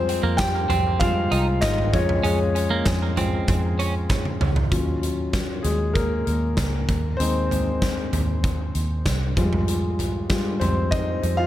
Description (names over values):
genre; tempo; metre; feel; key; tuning
piano-driven pop; 97 BPM; 4/4; straight; unclear; A4 = 438 Hz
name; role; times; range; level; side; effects
warm concert grand piano; accompaniment; 0.0-11.5 s; Db3 to G5; -25 LUFS; left 2 dB; dub echo
vintage muted fingered electric bass; bass; 0.0-11.5 s; Ab1 to F2; -24 LUFS; equal; none
huge arena drum kit; drums; 0.1-11.4 s; hi-hat, kick drum, snare drum, toms; -26 LUFS; right 1 dB; dub echo
twelve-string electric guitar; riff; 0.2-3.9 s; Bb3 to Eb4; -29 LUFS; right 5 dB; dub echo
group handclap; percussion; 0.4-4.2 s; none; barely audible; none; none
room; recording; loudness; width
light reverb, studio reverb; echo-heavy mix; -20 LUFS; side -13 dB against mid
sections
0.0-4.7 A section; 4.7-11.5 B section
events
grand piano solo 0.0-4.7, 4.7-11.5; drum fill 4.1-4.7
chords
0.0 Fmadd9; 1.9 Db/F; 4.7 Ebm7; 6.9 Ab/Eb; 9.4 Fmadd9